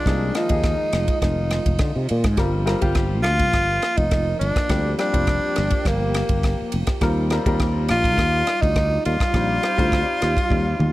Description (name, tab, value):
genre	electric jazz fusion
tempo	104 BPM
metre	4/4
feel	straight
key	unclear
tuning	A4 = 438 Hz
part	clear tenor saxophone	melody	0.0-10.9 s	Bb3 to F4	-22 LUFS	equal	none
part	brassy analog pad	sustained chords	0.0-10.9 s	Eb3 to D5	-31 LUFS	right 1 dB	chorus
part	warm concert grand piano	accompaniment	0.1-10.8 s	F3 to C5	-27 LUFS	left 2 dB	none
part	sustaining fretless electric bass	bass	0.1-10.9 s	F1 to D3	-22 LUFS	equal	lush chorus
part	tight funk drum kit	drums	0.1-10.9 s	kick drum, ride cymbal, rim click, toms	-24 LUFS	equal	none
room	light reverb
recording	none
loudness	-18 LUFS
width	side -16 dB against mid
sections	0.0-10.9 A section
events	drum fill 10.5-10.9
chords	0.0 Fm7; 2.4 Gm7; 7.0 Ebmaj9